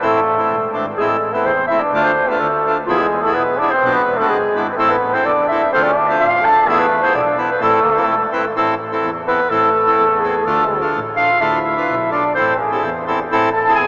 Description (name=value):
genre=klezmer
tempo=126 BPM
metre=2/4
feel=straight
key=A harmonic minor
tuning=A4 = 442 Hz
part: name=mellow clarinet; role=melody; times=0.0-13.9 s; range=F4 to A5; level=-16 LUFS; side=equal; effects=tape echo
part: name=trombone with straight mute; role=second line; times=0.0-13.9 s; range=F3 to A4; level=-19 LUFS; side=equal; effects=none
part: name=accordion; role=accompaniment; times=0.0-13.9 s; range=A3 to C5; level=-19 LUFS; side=equal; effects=none
part: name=dark double bass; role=bass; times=0.0-13.9 s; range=E1 to E2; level=-30 LUFS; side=equal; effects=none
room=wet huge ambient reverb, RT60 8.8 s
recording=dreamy mix soaked in reverb, small speaker sound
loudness=-13 LUFS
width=side -29 dB against mid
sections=1.0-8.6 A section; 8.6-13.9 B section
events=clarinet solo 8.6-13.9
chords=0.0 Am; 1.9 Dm; 2.9 E; 3.8 Bm; 4.8 Am; 5.7 Dm; 6.7 E; 7.6 Am; 10.5 Dm; 12.4 Am